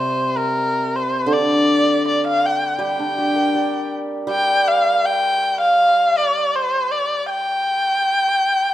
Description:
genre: chinese traditional, Chinese chamber ensemble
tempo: 80 BPM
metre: 4/4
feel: rubato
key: G yu mode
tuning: A4 = 440 Hz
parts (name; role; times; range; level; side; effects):
- warm erhu; melody; 0.0-8.7 s; Bb4 to G5; -17 LUFS; equal; none
- hammered dulcimer; accompaniment; 0.0-6.5 s; C3 to D5; -22 LUFS; right 1 dB; none
room: moderate recital hall reverb, RT60 1.5 s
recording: none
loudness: -16 LUFS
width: side -13 dB against mid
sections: 0.0-8.7 A section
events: none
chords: none

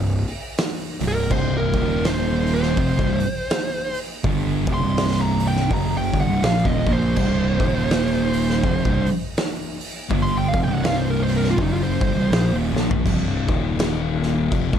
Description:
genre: stoner and doom metal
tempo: 82 BPM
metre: 4/4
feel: swing 59% on 8ths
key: C minor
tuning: A4 = 439 Hz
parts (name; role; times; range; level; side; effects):
- thick fuzz guitar; riff; 0.0-14.8 s; C2 to Bb3; -25 LUFS; left 9 dB; distortion
- thick fuzz guitar; riff; 0.0-13.0 s; C2 to Bb3; -24 LUFS; right 8 dB; distortion
- fuzz picked electric bass; bass; 0.0-14.8 s; C1 to Bb1; -25 LUFS; equal; overdrive
- oversized low-tuned drum kit; drums; 0.3-14.8 s; crash cymbal, hi-hat, kick drum, snare drum, toms; -24 LUFS; equal; none
- fuzz lead guitar; melody; 1.1-12.5 s; Eb4 to C6; -25 LUFS; right 1 dB; distortion, slapback echo
room: light reverb, small room ambience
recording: dark, warm production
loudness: -18 LUFS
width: side -9 dB against mid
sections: 0.0-13.0 A section; 13.0-14.8 B section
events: lead electric guitar solo 0.0-13.0; drum fill 12.7-13.0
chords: 0.0 C5; 1.7 Eb5; 2.8 Cm; 7.5 Eb5; 8.6 Cm; 13.0 C5; 13.4 Eb5

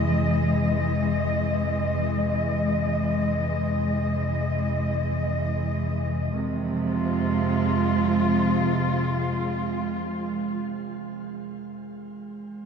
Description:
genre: dark ambient drone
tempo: free time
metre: none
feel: none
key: unclear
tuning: A4 = 440 Hz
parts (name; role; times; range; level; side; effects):
- warm studio cello section; sustained chords; 0.0-10.6 s; C3 to Eb5; -25 LUFS; right 1 dB; shimmer reverb
- quartz singing bowl; arpeggios; 0.0-10.0 s; E3 to Ab3; -37 LUFS; right 4 dB; none
- deep rumbling drone; drone; 0.0-10.0 s; F2 to C3; -28 LUFS; left 1 dB; built-in reverb
room: wet cathedral reverb, RT60 5.3 s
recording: none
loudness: -22 LUFS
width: side -6 dB against mid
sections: 0.0-6.3 A section; 6.3-11.5 B section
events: none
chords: 0.0 Fmmaj7; 6.3 Fm

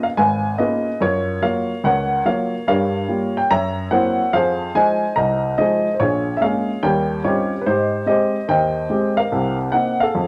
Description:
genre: solo jazz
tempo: 144 BPM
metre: 4/4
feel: swing 66% on 8ths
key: unclear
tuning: A4 = 443 Hz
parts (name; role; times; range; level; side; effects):
- dark upright piano; solo; 0.0-10.3 s; Ab1 to Bb5; -19 LUFS; equal; none
room: moderate large studio reverb, RT60 1.1 s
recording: none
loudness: -19 LUFS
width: mono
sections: 0.0-10.3 A section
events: none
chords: 0.0 Db13; 1.0 Gbmaj7; 2.7 Gm7b5; 3.5 Gb7#11; 4.3 Fm7; 6.0 Bbm7; 6.8 Eb13; 7.7 Abmaj7; 9.3 Ab13/C

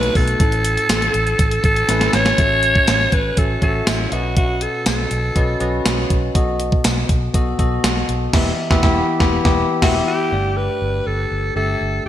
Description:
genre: 1980s-style pop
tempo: 121 BPM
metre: 4/4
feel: straight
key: A lydian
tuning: A4 = 436 Hz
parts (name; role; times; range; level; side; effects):
- breathy alto saxophone; melody; 0.0-5.8, 9.8-12.1 s; E4 to C#5; -19 LUFS; equal; none
- bell-like tine electric piano; accompaniment; 0.0-12.1 s; G2 to E5; -22 LUFS; left 2 dB; lush chorus
- vintage muted fingered electric bass; bass; 0.0-12.1 s; E1 to B1; -22 LUFS; equal; none
- gated 80s digital drum machine; drums; 0.0-10.0 s; crash cymbal, hi-hat, kick drum, snare drum, tambourine; -18 LUFS; equal; gated reverb, gated reverb snare
room: moderate lush hall reverb, RT60 1.8 s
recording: bright 1980s-style digital production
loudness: -15 LUFS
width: side -11 dB against mid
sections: 0.0-2.4 A section; 2.4-10.3 B section; 10.3-12.1 C section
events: drum fill 1.9-2.4; band accent 8.3-10.3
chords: 0.4 A; 2.4 A6; 4.1 Badd9; 6.4 B7; 8.3 Em; 10.3 Gsus2

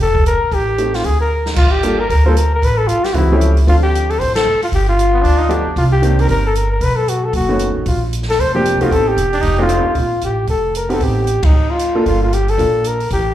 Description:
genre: jazz, small-group swing and bop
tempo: 229 BPM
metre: 4/4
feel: swing 60% on 8ths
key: G minor, Bb major from 10.0 s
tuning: A4 = 440 Hz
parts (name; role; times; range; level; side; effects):
- warm flugelhorn; melody; 0.0-13.3 s; Eb4 to C5; -17 LUFS; left 2 dB; slapback echo
- upright bass; bass; 0.0-13.3 s; E1 to E2; -17 LUFS; equal; none
- open jazz drum kit; drums; 0.1-13.2 s; crash cymbal, hi-hat, kick drum, ride cymbal, snare drum; -21 LUFS; equal; none
- warm upright piano; accompaniment; 0.8-13.0 s; Eb3 to C5; -19 LUFS; right 2 dB; slapback echo
- mellow trumpet; second line; 5.1-5.7, 9.3-9.9 s; B3 to Eb4; -22 LUFS; right 3 dB; slapback echo
room: light reverb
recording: live gig heard through the venue's PA, club reverb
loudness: -13 LUFS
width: side -12 dB against mid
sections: 0.0-1.6 A section; 1.6-10.0 B section; 10.0-13.3 A section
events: drum fill 1.3; band accent 4.3, 11.4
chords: 0.0 Bbmaj7(no3); 0.5 Am7b5; 1.0 Bb7/D; 1.6 Gm7; 2.6 A7b13; 3.7 Dm7; 4.7 G7; 5.8 Cm7; 6.8 B9; 7.9 Bb69; 8.9 Am7b5; 9.4 F13; 10.0 Bb5; 11.0 Am7b5; 11.5 Absus2; 12.1 Gm9

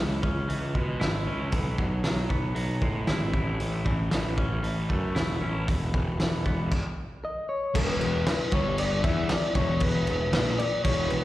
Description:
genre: quiet-loud alternative rock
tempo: 116 BPM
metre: 4/4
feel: straight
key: E major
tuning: A4 = 440 Hz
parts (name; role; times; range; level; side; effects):
- twangy electric guitar; arpeggios; 0.0-6.7 s; E2 to E4; -34 LUFS; right 1 dB; slapback echo
- fuzz picked electric bass; bass; 0.0-11.2 s; E1 to B2; -28 LUFS; equal; overdrive
- loose indie drum kit; drums; 0.2-11.2 s; crash cymbal, hi-hat, kick drum, snare drum; -28 LUFS; equal; none
- electric guitar through a small old amp; melody; 7.2-11.2 s; B4 to E5; -29 LUFS; left 2 dB; slapback echo, digital delay
- sludgy distorted guitar; riff; 7.7-11.2 s; E2 to E4; -31 LUFS; left 1 dB; overdrive, slapback echo
room: little or no reverb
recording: live gig heard through the venue's PA, recital hall reverb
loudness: -24 LUFS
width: side -15 dB against mid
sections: 0.0-7.7 A section; 7.7-11.2 B section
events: stop 6.7-7.7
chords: 0.0 C#m; 1.5 Eadd9/B; 3.3 A; 5.7 E5; 6.7 N.C.; 7.7 E5

